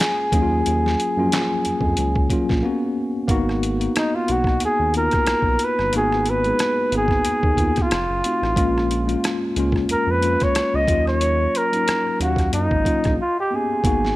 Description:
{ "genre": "R&B, neo-soul", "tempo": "91 BPM", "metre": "4/4", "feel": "swing 55% on 16ths", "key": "G# dorian", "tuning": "A4 = 441 Hz", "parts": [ { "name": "breathy flugelhorn", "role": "melody", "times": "0.0-14.2 s", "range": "D#4 to D#5", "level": "-21 LUFS", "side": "equal", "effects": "none" }, { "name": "mellow tine electric piano", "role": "accompaniment", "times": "0.0-14.2 s", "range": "E#3 to E#5", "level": "-23 LUFS", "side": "left 2 dB", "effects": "medium stereo tremolo" }, { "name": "boom bap sampler-style drum kit", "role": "drums", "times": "0.0-14.1 s", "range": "handclaps, hi-hat, kick drum, rim click, snare drum", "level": "-24 LUFS", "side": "equal", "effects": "none" }, { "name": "smooth synth bass", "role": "bass", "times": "0.3-14.2 s", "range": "F1 to F#2", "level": "-24 LUFS", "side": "equal", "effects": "none" } ], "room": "light reverb, digital ambience", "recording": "none", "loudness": "-18 LUFS", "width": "side -17 dB against mid", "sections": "0.0-3.3 A section; 3.3-14.2 B section", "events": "break 2.6-3.3, 13.2-13.8; flugelhorn solo 3.3-14.2", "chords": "0.3 D#m9; 2.6 F#add11/A#; 3.3 G#m7; 7.9 F7b9; 8.6 A#m7; 10.9 D#m9; 13.2 A#m6", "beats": "| 0.65 1.31 1.97 2.63 | 3.29 3.95 4.61 5.27 | 5.93 6.59 7.25 7.91 | 8.57 9.22 9.88 10.54 | 11.20 11.86 12.52 13.18 | 13.84" }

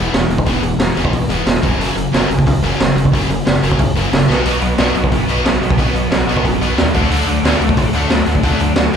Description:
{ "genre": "punk rock", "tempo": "181 BPM", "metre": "4/4", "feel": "straight", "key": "unclear", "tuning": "A4 = 439 Hz", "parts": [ { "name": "biting overdriven guitar", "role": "riff", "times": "0.0-9.0 s", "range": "E2 to D4", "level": "-19 LUFS", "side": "left 8 dB", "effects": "slapback echo" }, { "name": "overdriven electric guitar", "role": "riff", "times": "0.0-9.0 s", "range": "F#2 to B3", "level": "-21 LUFS", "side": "right 11 dB", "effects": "none" }, { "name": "gritty driven synth bass", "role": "bass", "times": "0.0-9.0 s", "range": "E1 to D#2", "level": "-20 LUFS", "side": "equal", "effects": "none" }, { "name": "raw garage drum kit", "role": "drums", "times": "0.1-9.0 s", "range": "hi-hat, kick drum, snare drum", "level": "-17 LUFS", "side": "right 1 dB", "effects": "none" }, { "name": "distorted electric guitar", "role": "riff", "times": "4.5-9.0 s", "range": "B2 to D4", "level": "-22 LUFS", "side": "right 1 dB", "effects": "distortion" } ], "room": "little or no reverb", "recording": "live gig heard through the venue's PA, club reverb", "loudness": "-12 LUFS", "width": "side -7 dB against mid", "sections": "0.0-9.0 A section", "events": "drum fill 4.3", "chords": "0.0 E; 1.6 F#5; 4.3 B5; 6.9 D", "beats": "0.14 | 0.47 0.80 1.13 1.47 | 1.80 2.13 2.46 2.80 | 3.13 3.46 3.79 4.12 | 4.46 4.79 5.12 5.45 | 5.79 6.12 6.45 6.78 | 7.11 7.44 7.77 8.11 | 8.44 8.77" }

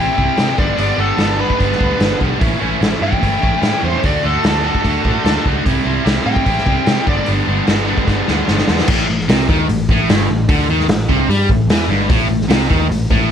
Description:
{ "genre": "blues rock power trio and southern rock", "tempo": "148 BPM", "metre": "4/4", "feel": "straight", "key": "unclear", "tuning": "A4 = 443 Hz", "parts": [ { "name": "smooth overdriven lead guitar", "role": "melody", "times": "0.0-7.3 s", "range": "A4 to G5", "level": "-20 LUFS", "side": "left 1 dB", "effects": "none" }, { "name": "distorted electric guitar", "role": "riff", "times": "0.0-13.3 s", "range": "G2 to F#4", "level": "-17 LUFS", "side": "equal", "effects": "distortion" }, { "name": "vintage muted picked electric bass", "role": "bass", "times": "0.0-13.3 s", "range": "G1 to C3", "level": "-20 LUFS", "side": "equal", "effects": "none" }, { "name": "raw garage drum kit", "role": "drums", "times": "0.2-13.2 s", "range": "crash cymbal, hi-hat, kick drum, snare drum", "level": "-17 LUFS", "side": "equal", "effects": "none" } ], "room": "light reverb", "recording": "none", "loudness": "-13 LUFS", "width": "side -8 dB against mid", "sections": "0.0-8.9 A section; 8.9-13.3 B section", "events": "drum fill 8.1-8.9", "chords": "0.0 C; 0.6 G; 2.4 A; 4.0 D; 5.6 C; 7.1 G; 8.9 A5", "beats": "0.38 | 0.78 1.19 1.59 2.00 | 2.41 2.81 3.22 3.62 | 4.03 4.43 4.84 5.24 | 5.65 6.05 6.46 6.86 | 7.27 7.67 8.08 8.48 | 8.88 9.29 9.69 10.09 | 10.49 10.89 11.29 11.70 | 12.10 12.50 12.90 13.30" }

